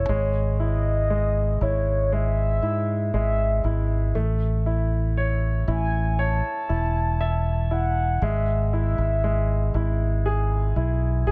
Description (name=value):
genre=pop ballad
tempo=59 BPM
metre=4/4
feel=straight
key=C# minor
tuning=A4 = 439 Hz
part: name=mellow horn-like synth lead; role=melody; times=0.0-10.2 s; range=C#5 to A5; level=-30 LUFS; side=equal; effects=chorus, tape echo
part: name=bright concert grand piano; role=accompaniment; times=0.0-11.3 s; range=G#3 to E5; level=-32 LUFS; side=equal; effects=none
part: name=fingered electric bass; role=bass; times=0.0-11.3 s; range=E1 to G#2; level=-25 LUFS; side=equal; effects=none
room=studio ambience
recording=none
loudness=-24 LUFS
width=mono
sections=0.0-11.3 A section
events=none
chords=0.1 C#madd9/G#; 4.2 A; 8.2 E/G#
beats=| 0.09 1.10 2.12 3.14 | 4.16 5.17 6.19 7.21 | 8.22 9.24 10.26 11.27